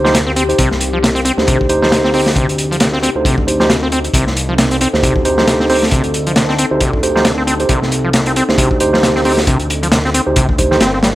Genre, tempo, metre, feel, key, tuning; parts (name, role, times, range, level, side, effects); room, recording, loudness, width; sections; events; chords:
breakbeat, breaks; 135 BPM; 4/4; swing 57% on 16ths; A4 = 440 Hz
dark analog pad; sustained chords; 0.0-11.2 s; C4 to A4; -23 LUFS; left 1 dB; chorus, phaser, sidechain pumping
overdriven acid bass; riff; 0.0-11.1 s; C3 to C4; -18 LUFS; equal; dub echo
mellow tine electric piano; stabs; 0.0-10.8 s; Eb4 to C5; -16 LUFS; right 2 dB; dub echo
fat analog bass; bass; 0.0-11.2 s; G1 to D2; -20 LUFS; equal
crunchy breakbeat drum kit; drums; 0.1-11.2 s; hi-hat, kick drum, snare drum; -15 LUFS; equal
light reverb; -11 LUFS; side -16 dB against mid
0.0-11.2 A section
0.0 Cm